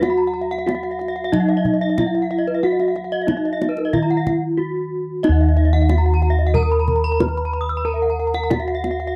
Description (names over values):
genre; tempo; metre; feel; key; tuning
Balinese gamelan; 92 BPM; 4/4; straight; Eb pelog; A4 = 441 Hz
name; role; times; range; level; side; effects
gamelan-type bronze metallophone; melody; 0.0-9.2 s; Eb4 to Cb5-20c; -24 LUFS; equal; none
gamelan-type bronze metallophone; arpeggios; 0.0-9.2 s; Cb5-20c to Eb6; -30 LUFS; equal; none
gamelan-type bossed gongs; bass; 0.0-9.2 s; Eb2 to Bb4-30c; -22 LUFS; equal; none
kendang; percussion; 0.0-9.0 s; none; -27 LUFS; equal; none
gamelan-type bronze metallophone; arpeggios; 0.1-9.1 s; Bb4-30c to Fb6+20c; -30 LUFS; equal; none
room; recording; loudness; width
little or no reverb; dry, close 1970s-style studio recording; -19 LUFS; mono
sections
0.0-5.2 A section; 5.2-9.2 A section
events
break 4.3-5.2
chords
none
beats
| 0.02 0.67 1.32 1.98 | 2.63 3.28 3.94 4.59 | 5.24 5.90 6.55 7.20 | 7.86 8.51